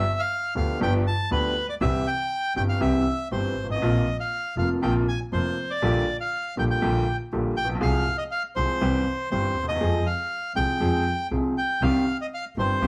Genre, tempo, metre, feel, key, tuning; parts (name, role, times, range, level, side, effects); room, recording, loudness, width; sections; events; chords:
tango; 120 BPM; 4/4; rubato; F minor; A4 = 440 Hz
bandoneon; melody; 0.0-12.9 s; B4 to A5; -30 LUFS; equal
warm double bass; bass; 0.0-12.9 s; F1 to F2; -30 LUFS; equal
bright upright piano; accompaniment; 0.6-12.9 s; F1 to Ab4; -28 LUFS; equal
light reverb; -25 LUFS; mono
0.0-12.9 A section
0.0 G7; 1.8 C; 3.8 Bbsus2; 5.8 Gm/Bb; 7.8 Fm/C; 8.8 C; 9.8 Fm; 11.8 Cm